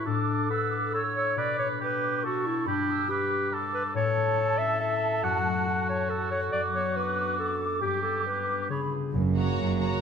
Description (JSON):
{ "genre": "cinematic", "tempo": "139 BPM", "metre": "3/4", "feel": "straight", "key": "unclear", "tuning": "A4 = 440 Hz", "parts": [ { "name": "large flute ensemble", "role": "second line", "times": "0.0-8.9 s", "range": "A5 to E6", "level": "-32 LUFS", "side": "right 3 dB", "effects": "none" }, { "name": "warm clarinet", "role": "second line", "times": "0.0-9.1 s", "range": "D4 to F#5", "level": "-30 LUFS", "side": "left 1 dB", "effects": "none" }, { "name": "warm oboe", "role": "second line", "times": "0.0-8.8 s", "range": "F#4 to C#5", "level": "-32 LUFS", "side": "right 3 dB", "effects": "none" }, { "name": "concert harp", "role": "arpeggios", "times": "0.0-10.0 s", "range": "F#2 to F#5", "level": "-32 LUFS", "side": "left 7 dB", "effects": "none" }, { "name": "warm trombone section", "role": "sustained chords", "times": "9.1-10.0 s", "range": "C#3 to A#3", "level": "-33 LUFS", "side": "right 8 dB", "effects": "none" }, { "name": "dark symphonic double bass section", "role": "bass", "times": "9.1-10.0 s", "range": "F#1", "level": "-29 LUFS", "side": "right 5 dB", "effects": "none" }, { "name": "rich symphonic cello section", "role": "bass", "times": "9.1-10.0 s", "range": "F#2", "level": "-29 LUFS", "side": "right 6 dB", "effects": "none" }, { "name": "timpani", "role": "percussion", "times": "9.1-9.8 s", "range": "F#2", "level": "-33 LUFS", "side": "equal", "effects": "none" }, { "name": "rich studio violin section", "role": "melody", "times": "9.4-10.0 s", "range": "A#5", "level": "-36 LUFS", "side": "left 1 dB", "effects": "none" }, { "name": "warm symphonic violin section", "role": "second line", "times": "9.4-10.0 s", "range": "C#5", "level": "-36 LUFS", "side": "left 2 dB", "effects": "none" }, { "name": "clear symphonic viola section", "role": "accompaniment", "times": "9.4-10.0 s", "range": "F#4", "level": "-36 LUFS", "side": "right 1 dB", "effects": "none" } ], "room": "moderate scoring stage reverb, RT60 1.6 s", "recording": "none", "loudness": "-25 LUFS", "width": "side -7 dB against mid", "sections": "0.0-9.1 A section", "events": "none", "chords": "0.1 D/A; 1.4 Bm; 2.7 G; 4.0 A; 5.2 F#m; 6.5 Bmadd9/F#; 7.8 G; 8.7 C#7; 9.1 F#" }